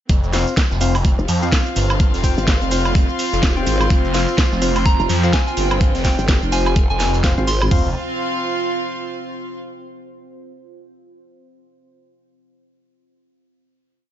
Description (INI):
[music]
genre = bass house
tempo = 126 BPM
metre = 4/4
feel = swing 59% on 16ths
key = unclear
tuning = A4 = 440 Hz
[part]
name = deep dark ambient pad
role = sustained chords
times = 1.5-7.9 s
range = C4 to C5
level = -29 LUFS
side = right 3 dB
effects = chorus, built-in reverb, sidechain pumping
[part]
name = phased detuned saw bass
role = bass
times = 0.1-7.9 s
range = F1 to F2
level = -20 LUFS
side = equal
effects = phaser, overdrive, sidechain pumping
[part]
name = garage drum kit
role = drums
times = 0.1-7.8 s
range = hi-hat, kick drum, toms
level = -16 LUFS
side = equal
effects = overdrive, studio reverb
[part]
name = garage drum kit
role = drums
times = 0.1-7.7 s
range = hi-hat, shaker, snare drum, woodblock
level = -24 LUFS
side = right 1 dB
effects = studio reverb
[part]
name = vintage drum kit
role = drums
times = 0.1-7.6 s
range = hi-hat, snare drum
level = -33 LUFS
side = right 3 dB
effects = none
[part]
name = bright chamber string section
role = texture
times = 0.1-9.6 s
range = C4 to C6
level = -26 LUFS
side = equal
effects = sidechain pumping
[part]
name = percussive organ stab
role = stabs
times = 0.3-7.9 s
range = C4 to G5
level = -26 LUFS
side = left 2 dB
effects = chorus, sidechain pumping, tape echo
[part]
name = growl bass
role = bass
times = 1.2-7.7 s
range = Eb1 to Ab1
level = -20 LUFS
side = equal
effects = chorus, tube saturation, sidechain pumping
[part]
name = soft synth bell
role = melody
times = 4.9-7.7 s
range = Ab5 to C6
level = -26 LUFS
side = right 1 dB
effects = chorus, phaser, tape echo
[sound]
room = digital ambience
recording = nothing above 7.6 kHz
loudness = -15 LUFS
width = side -11 dB against mid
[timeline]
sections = 0.1-7.7 drop; 7.7-9.6 final chord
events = drop 0.1-7.7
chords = 0.1 F5